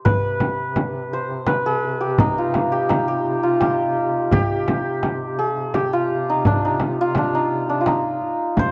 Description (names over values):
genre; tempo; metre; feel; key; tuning
Persian modal ensemble; 84 BPM; 3/4; straight; C avaz esfahan; A4 = 437 Hz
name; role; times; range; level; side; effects
santur; melody; 0.0-8.7 s; D4 to C5; -23 LUFS; equal; none
warm duduk; drone; 0.0-8.7 s; C3; -32 LUFS; equal; none
frame drum; percussion; 0.1-8.7 s; none; -25 LUFS; equal; none
tombak; percussion; 0.1-8.7 s; none; -26 LUFS; equal; none
room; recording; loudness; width
moderate spring reverb, RT60 2.0 s; cassette tape; -21 LUFS; mono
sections
0.1-8.7 A section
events
none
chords
none